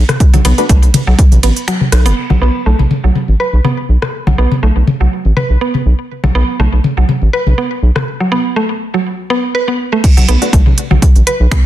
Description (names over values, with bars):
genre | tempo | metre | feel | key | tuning
minimal techno | 122 BPM | 4/4 | swing 54% on 16ths | B minor | A4 = 439 Hz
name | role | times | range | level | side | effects
rubbery square bass | bass | 0.0-11.5 s | F#1 to B1 | -10 LUFS | equal | sidechain pumping
techno drum kit | drums | 0.1-2.3, 10.0-11.6 s | crash cymbal, finger snaps, hi-hat, ride cymbal | -20 LUFS | right 3 dB | low-pass filter on hats, low-pass filter on cymbals, soft clipping on snare, low-pass filter on snare, low-pass filter on room
minimal click drum kit | percussion | 0.1-11.6 s | rim click, toms | -17 LUFS | left 3 dB | soft clipping on snare, ping-pong delay
electronic kick drum | drums | 0.2-1.3, 10.0-11.6 s | none | -8 LUFS | equal | none
mallet-like synth pluck | riff | 0.3-11.6 s | F#3 to B4 | -16 LUFS | right 2 dB | chorus, vintage 12-bit sampler grit, sidechain pumping, ping-pong delay
filtered dub chord stab | stabs | 0.6, 10.4-10.5 s | A3 to B4 | -19 LUFS | left 2 dB | wide subtle chorus, ping-pong delay
room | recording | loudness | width
light reverb | dense, heavily limited modern master | -10 LUFS | side -13 dB against mid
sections
0.0-2.2 A section; 2.2-10.0 B section; 10.0-11.7 A section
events
drop 0.0-2.2, 10.0-11.7; break 1.7-2.2, 8.1-10.0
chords
0.0 B7(no3); 2.2 B5; 10.0 B7(no3)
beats
| 0.20 0.69 1.19 1.68 | 2.17 2.66 3.15 3.65 | 4.14 4.63 5.12 5.61 | 6.10 6.60 7.09 7.58 | 8.07 8.56 9.05 9.55 | 10.04 10.53 11.02 11.51